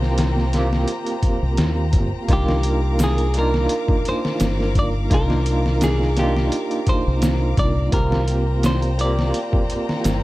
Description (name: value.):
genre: trip hop.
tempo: 85 BPM.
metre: 4/4.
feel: swing 54% on 16ths.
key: C minor.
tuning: A4 = 437 Hz.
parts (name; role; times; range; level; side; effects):
overdriven tine electric piano; accompaniment; 0.0-10.2 s; Bb3 to G4; -24 LUFS; right 1 dB; tremolo, tape echo.
rich chamber violin section; sustained chords; 0.0-10.2 s; Bb4 to D6; -31 LUFS; left 1 dB; vintage 12-bit sampler grit.
deep dub fingered electric bass; bass; 0.0-10.2 s; G1 to Eb2; -20 LUFS; equal; tube saturation.
trip hop sampler-style drum kit; drums; 0.0-10.2 s; hi-hat, kick drum, snare drum; -22 LUFS; equal; overdrive.
semi-hollow electric guitar; melody; 2.3-10.2 s; G4 to D5; -26 LUFS; equal; vintage 12-bit sampler grit, tape echo.
egg shaker; percussion; 3.0-10.2 s; none; -38 LUFS; right 2 dB; none.
room: little or no reverb.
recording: dark, warm production.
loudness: -17 LUFS.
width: side -17 dB against mid.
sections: 0.0-10.2 A section.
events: none.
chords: 0.0 Eb6; 2.3 Cm11; 7.9 Bb69.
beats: 0.17 0.88 1.58 | 2.29 2.99 3.70 4.41 | 5.11 5.82 6.52 7.23 | 7.93 8.64 9.35 10.05.